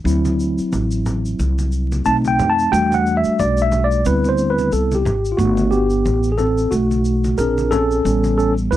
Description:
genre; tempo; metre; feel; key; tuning
hip hop, jazz-hop; 90 BPM; 4/4; swing 58% on 16ths; G major; A4 = 439 Hz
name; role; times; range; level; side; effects
mellow tine electric piano; accompaniment; 0.0-8.8 s; F#3 to A5; -17 LUFS; equal; medium stereo tremolo
upright bass; bass; 0.0-8.8 s; G1 to F2; -20 LUFS; equal; transformer saturation
tube shaker and congas; percussion; 0.1-8.8 s; none; -29 LUFS; left 1 dB; none
room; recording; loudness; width
little or no reverb; dry, gritty hardware recording, vinyl crackle; -15 LUFS; side -13 dB against mid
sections
0.0-5.4 A section; 5.4-8.8 B section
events
tine electric piano solo 0.0-5.4, 5.4-8.8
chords
0.1 D9; 2.1 B7b9; 2.7 Em11; 4.1 D13sus4; 5.4 Gmaj9; 7.4 Bb9; 8.1 A9

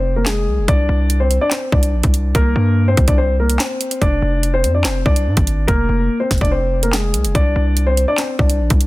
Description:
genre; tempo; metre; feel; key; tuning
hip hop, drill; 144 BPM; 4/4; half-time; unclear; A4 = 440 Hz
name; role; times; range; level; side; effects
dark concert grand piano; melody; 0.0-8.9 s; Ab3 to D5; -19 LUFS; left 1 dB; none
hard-hitting 808-style bass; bass; 0.0-8.9 s; F1 to Ab2; -17 LUFS; equal; none
drill drum kit; drums; 0.3-8.9 s; handclaps, hi-hat, kick drum, snare drum; -17 LUFS; equal; none
room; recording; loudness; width
little or no reverb; dense, heavily limited modern master; -14 LUFS; side -18 dB against mid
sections
0.0-8.9 A section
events
break 0.0-0.7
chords
0.0 Fm; 0.7 Csus2; 4.0 Fm; 7.3 Csus2

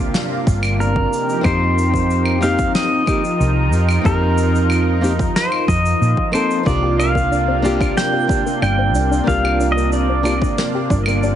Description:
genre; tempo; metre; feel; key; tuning
sunset chillout; 92 BPM; 4/4; straight; C minor; A4 = 440 Hz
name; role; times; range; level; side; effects
lush unison pad; sustained chords; 0.0-11.4 s; C3 to Bb4; -22 LUFS; equal; chorus
hollow-body short-scale fingered electric bass; bass; 0.0-11.4 s; G1 to Bb2; -18 LUFS; equal; none
snare drum, cabasa and claves; drums; 0.1-11.4 s; none; -25 LUFS; equal; none
electronic kick drum; drums; 0.5-11.0 s; none; -21 LUFS; equal; overdrive
pedal steel guitar; melody; 0.8-11.4 s; Bb4 to G5; -21 LUFS; equal; ping-pong delay
nylon-string guitar; accompaniment; 1.4-10.3 s; Bb3 to A4; -22 LUFS; moving between left 5 dB and right 2 dB; auto-pan, tape echo
soft round pluck; arpeggios; 6.7-11.4 s; Bb3 to G4; -26 LUFS; left 3 dB; chorus, tape echo
room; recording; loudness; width
light reverb, small room ambience; heavily compressed radio sound, nothing above 10.8 kHz; -14 LUFS; side -10 dB against mid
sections
0.0-11.4 A section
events
none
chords
0.0 C9sus4; 1.1 F9sus4; 6.7 C9sus4

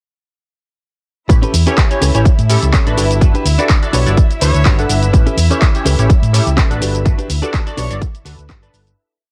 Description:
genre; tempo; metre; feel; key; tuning
filtered disco house; 125 BPM; 4/4; swing 55% on 16ths; unclear; A4 = 440 Hz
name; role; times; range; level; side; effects
funky polysynth comp; accompaniment; 1.3-9.0 s; C#4 to F#5; -24 LUFS; equal; chorus, phaser, vintage 12-bit sampler grit, sidechain pumping
muted studio violin section; sustained chords; 1.3-9.0 s; E4 to E5; -29 LUFS; equal; sidechain pumping
direct-recorded clean electric guitar; riff; 1.3-8.8 s; C#4 to F#5; -25 LUFS; equal; vintage 12-bit sampler grit, sidechain pumping
overdriven fingered electric bass; bass; 1.3-8.9 s; G1 to A2; -17 LUFS; equal; sidechain pumping
electronic kick drum; drums; 1.3-8.6 s; none; -14 LUFS; equal; none
punchy analog drum machine; drums; 1.3-9.0 s; handclaps, hi-hat, shaker; -23 LUFS; equal; sidechain pumping on hats, sidechain pumping on perc
brilliant trumpet section; melody; 3.9-4.8, 7.8-8.0 s; C#5; -26 LUFS; equal; sidechain pumping
room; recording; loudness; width
digital ambience; none; -13 LUFS; mono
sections
1.3-9.0 drop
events
drop 1.3-9.0; clean electric guitar fill 4.2-5.1; fade-out 6.4-9.0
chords
1.3 A9; 3.0 Gmaj7; 5.1 A9; 6.8 Gmaj7

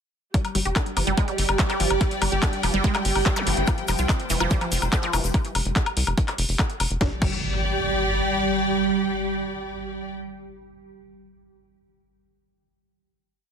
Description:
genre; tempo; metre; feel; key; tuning
psychedelic trance; 144 BPM; 4/4; straight; unclear; A4 = 436 Hz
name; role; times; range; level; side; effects
evolving wavetable pad; sustained chords; 1.0-10.0 s; G3 to G4; -28 LUFS; right 3 dB; ensemble chorus, built-in reverb, phaser, sidechain pumping
wide unison pluck; riff; 0.3-7.3 s; E3 to G4; -28 LUFS; moving between left 3 dB and right 4 dB; auto-pan, sidechain pumping, digital delay
electronic kick drum; drums; 0.3-7.3 s; none; -23 LUFS; equal; none
techno drum kit; drums; 0.3-7.3 s; crash cymbal, handclaps, hi-hat, snare drum, woodblock; -27 LUFS; left 3 dB; none
rich studio string section; texture; 0.3-10.2 s; F4 to G5; -30 LUFS; left 2 dB; sidechain pumping
tight sequencer bass; bass; 0.6-8.2 s; F1 to C2; -26 LUFS; equal; none
zap and impact; sound effects; 3.4-3.5, 7.2-10.1 s; none; -33 LUFS; equal; none
tube shaker; percussion; 3.7-5.3 s; none; -35 LUFS; left 7 dB; none
room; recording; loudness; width
light reverb; dense, heavily limited modern master; -21 LUFS; side -7 dB against mid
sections
0.3-7.0 drop; 7.0-10.3 final chord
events
drop 0.3-7.0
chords
0.3 G5; 3.7 F5; 7.0 G5

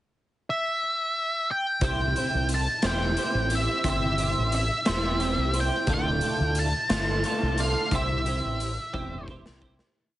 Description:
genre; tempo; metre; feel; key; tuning
quiet-loud alternative rock; 59 BPM (dotted quarters); 6/8; straight; unclear; A4 = 440 Hz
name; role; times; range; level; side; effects
octave-fuzz lead guitar; melody; 0.5-9.3 s; E5 to A5; -27 LUFS; equal; distortion
twelve-string electric guitar; arpeggios; 1.8-10.0 s; A2 to C5; -30 LUFS; right 3 dB; ensemble chorus
growling fingered electric bass; bass; 1.8-9.8 s; D1 to D2; -28 LUFS; equal; overdrive
raw garage drum kit; drums; 1.8-10.0 s; hi-hat, kick drum, snare drum; -30 LUFS; equal; none
room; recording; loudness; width
light reverb, studio reverb; heavily compressed radio sound, nothing above 10.9 kHz; -23 LUFS; side -14 dB against mid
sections
0.0-1.8 pickup bar; 1.8-10.0 pre-chorus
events
fade-out 7.9-10.0; drum fill 8.9-10.0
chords
0.0 N.C.; 1.8 C; 5.9 Dm; 7.9 C

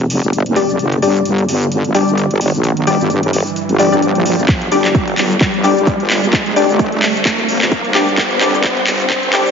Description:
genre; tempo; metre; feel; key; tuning
bass house; 130 BPM; 4/4; swing 56% on 16ths; unclear; A4 = 439 Hz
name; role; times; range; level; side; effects
dark analog pad; sustained chords; 0.3-9.5 s; G3 to D5; -26 LUFS; right 2 dB; chorus, sidechain pumping
wobble bass; bass; 0.0-9.5 s; F1 to Bb1; -17 LUFS; equal; chorus, tube saturation, sidechain pumping, high-pass filter
house drum kit; drums; 0.0-9.5 s; handclaps, hi-hat, shaker; -18 LUFS; equal; overdrive
riser; sound effects; 0.0-9.5 s; none; -21 LUFS; right 2 dB; none
orchestra-hit-like synth stab; stabs; 0.6-9.5 s; G3 to D5; -17 LUFS; left 4 dB; built-in reverb, sidechain pumping, dub echo
electronic kick drum; drums; 4.5-9.2 s; none; -16 LUFS; equal; none
room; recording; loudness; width
moderate lush hall reverb, RT60 2.0 s; heavily compressed radio sound, high-pass filter, nothing above 7.4 kHz; -12 LUFS; side -6 dB against mid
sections
0.0-9.5 A section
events
build-up 0.0-9.5; riser 0.0-9.5; filter sweep on synth stab 0.0-9.5; filter sweep on analog synth pad 0.0-9.5; filter sweep 0.0-9.5; drum fill 4.5-9.5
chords
0.0 G5

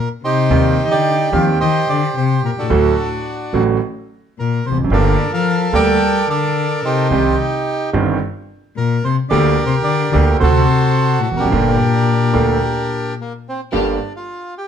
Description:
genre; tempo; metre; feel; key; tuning
tango; 109 BPM; 4/4; rubato; G minor; A4 = 444 Hz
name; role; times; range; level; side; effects
bandoneon; melody; 0.0-14.7 s; Bb3 to G5; -18 LUFS; right 2 dB; none
warm cello; second line; 0.0-13.1 s; A2 to G3; -18 LUFS; left 6 dB; none
clear concert grand piano; accompaniment; 0.5-14.0 s; G1 to G4; -18 LUFS; right 4 dB; none
upright bass; bass; 0.5-14.0 s; E1 to Eb2; -20 LUFS; right 2 dB; none
bright chamber string section; stabs; 13.7-14.0 s; Bb3 to G4; -24 LUFS; left 4 dB; none
room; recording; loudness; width
moderate large studio reverb, RT60 0.9 s; none; -14 LUFS; side -8 dB against mid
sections
0.0-13.7 A section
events
none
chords
0.0 N.C.; 0.5 Cm/Eb; 2.7 D; 4.9 Gmadd9; 7.1 Cm; 9.3 Gm/D; 10.4 D7; 11.5 Gm

